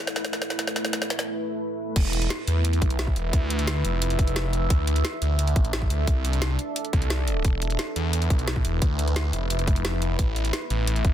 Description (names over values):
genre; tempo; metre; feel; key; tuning
dark technical drum and bass; 175 BPM; 4/4; straight; unclear; A4 = 439 Hz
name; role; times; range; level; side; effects
deep dark ambient pad; sustained chords; 0.0-11.1 s; A3 to E5; -31 LUFS; right 1 dB; chorus, built-in reverb, sidechain pumping
drum and bass drum kit; drums; 0.1-11.1 s; crash cymbal, hi-hat, snare drum; -30 LUFS; equal; high-pass filter on hats, high-pass filter on snare, high-pass filter on cymbals, high-pass filter on room
phased detuned saw bass; bass; 2.0-11.1 s; E1 to E2; -24 LUFS; equal; phaser, tube saturation, sidechain pumping
electronic kick drum; drums; 2.0-11.1 s; none; -22 LUFS; equal; none
room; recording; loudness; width
little or no reverb; dense, heavily limited modern master; -22 LUFS; side -11 dB against mid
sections
0.0-2.0 A section; 2.0-11.1 B section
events
build-up 0.0-2.0; drum fill 0.0-1.3; filter sweep on ambient pad 0.0-2.0; break 1.3-2.0; drop 2.0-11.1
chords
0.0 A5; 2.0 E5; 4.7 D5; 7.4 E5; 10.2 A5